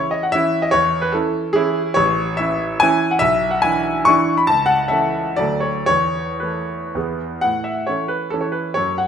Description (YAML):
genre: classical, romantic triple-time dance for piano with dotted rhythms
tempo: 110-156 BPM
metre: 3/4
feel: rubato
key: A major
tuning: A4 = 440 Hz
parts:
  - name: clear concert grand piano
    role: solo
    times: 0.0-9.1 s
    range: A1 to C#6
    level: -16 LUFS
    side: equal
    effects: none
room: moderate recital hall reverb, RT60 1.6 s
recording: minimal, uncompressed stereo recording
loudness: -16 LUFS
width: side -8 dB against mid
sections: 0.0-7.4 A section; 7.4-9.1 B section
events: none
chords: 0.0 C#m; 0.7 C#m/E; 2.0 A; 3.2 E7/B; 4.5 A/C#; 5.4 D; 5.9 Esus4; 7.0 E; 7.4 A